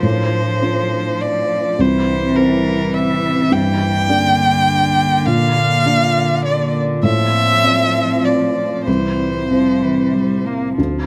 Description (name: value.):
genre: neoclassical piano and strings.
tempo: 93-106 BPM.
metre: 3/4.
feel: rubato.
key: unclear.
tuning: A4 = 440 Hz.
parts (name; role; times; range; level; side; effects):
warm violin; melody; 0.0-10.4 s; Bb4 to G5; -20 LUFS; equal; none.
warm cello; second line; 0.0-11.1 s; D3 to Bb3; -25 LUFS; equal; none.
felt-muted upright piano; accompaniment; 0.0-11.1 s; C2 to D5; -20 LUFS; equal; none.
warbly tape-like pad; sustained chords; 0.0-11.1 s; Bb3 to F5; -27 LUFS; equal; chorus, built-in reverb.
room: light reverb.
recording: none.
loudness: -16 LUFS.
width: mono.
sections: 0.0-10.8 A section.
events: none.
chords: 0.0 F6/A; 1.8 C; 3.5 Gm; 5.3 Bb; 7.0 F6/A; 8.9 C.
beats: | 0.03 0.62 1.22 | 1.79 2.36 2.95 | 3.53 4.10 4.68 | 5.27 5.86 6.45 | 7.03 7.62 8.23 | 8.87 9.51 10.15 | 10.78.